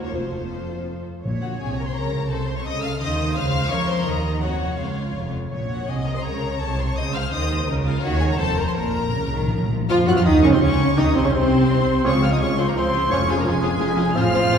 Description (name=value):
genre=quick classical-period movement for symphony orchestra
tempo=168 BPM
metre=3/4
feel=rubato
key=Bb minor, Db major from 9.9 s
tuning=A4 = 440 Hz
part: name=rich chamber violin section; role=melody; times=0.0-14.6 s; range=A4 to Gb6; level=-30 LUFS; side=left 3 dB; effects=none
part: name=rich chamber violin section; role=second line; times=0.0-14.6 s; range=C4 to F5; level=-28 LUFS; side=left 3 dB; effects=none
part: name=rich studio viola section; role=accompaniment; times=0.0-14.6 s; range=F3 to Eb5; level=-27 LUFS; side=right 2 dB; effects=none
part: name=rich studio cello section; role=bass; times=0.0-14.6 s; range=Db2 to Gb3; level=-26 LUFS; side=right 2 dB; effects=none
part: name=rich studio double bass section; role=bass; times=0.0-14.6 s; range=F1 to Gb2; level=-25 LUFS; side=equal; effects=none
part: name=dark French horn section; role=sustained chords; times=0.1-0.3, 9.9-14.3 s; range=Ab3 to Gb4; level=-26 LUFS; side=left 2 dB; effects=none
part: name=timpani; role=percussion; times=0.1-1.7, 5.5-6.0, 8.8-9.9, 13.1-13.6 s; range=F2 to Bb2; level=-31 LUFS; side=left 1 dB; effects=none
part: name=clear clarinet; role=second line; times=9.9-14.6 s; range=C4 to Db5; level=-30 LUFS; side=equal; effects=none
part: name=large flute ensemble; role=second line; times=9.9-14.6 s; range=Ab4 to Gb5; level=-29 LUFS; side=left 1 dB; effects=none
part: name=mellow cor anglais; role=second line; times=9.9-14.6 s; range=Ab3 to Gb4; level=-29 LUFS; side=right 1 dB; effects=none
part: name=warm bassoon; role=accompaniment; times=9.9-14.6 s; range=C3 to Gb3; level=-28 LUFS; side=right 1 dB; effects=none
part: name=mellow trumpet section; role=stabs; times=9.9-14.6 s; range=Ab4 to Gb5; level=-27 LUFS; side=right 1 dB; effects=none
room=wet concert hall reverb, RT60 2.3 s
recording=heard from further back in the room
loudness=-19 LUFS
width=side -7 dB against mid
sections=0.0-1.2 A section; 1.2-9.9 B section; 9.9-14.6 C section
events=timpani fill 8.8-9.9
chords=0.1 F; 1.2 Bbm; 2.3 F7b13/C; 3.4 Bbm/Db; 4.1 Eb5; 4.4 Dbadd11/F; 5.5 Bbm; 6.6 F7(no3)/C; 7.7 Bbm/Db; 8.0 Ebm; 8.4 F; 8.8 Bbm; 9.9 Db; 11.0 Cm; 12.0 Db; 13.1 Db/F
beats=| 0.12 0.50 0.87 | 1.24 1.60 1.96 | 2.31 2.66 3.01 | 3.36 3.71 4.06 | 4.42 4.80 5.16 | 5.53 5.89 6.25 | 6.61 6.96 7.32 | 7.67 8.02 8.38 | 8.76 9.14 9.52 | 9.90 10.26 10.62 | 10.98 11.34 11.69 | 12.05 12.40 12.76 | 13.11 13.46 13.81 | 14.16 14.52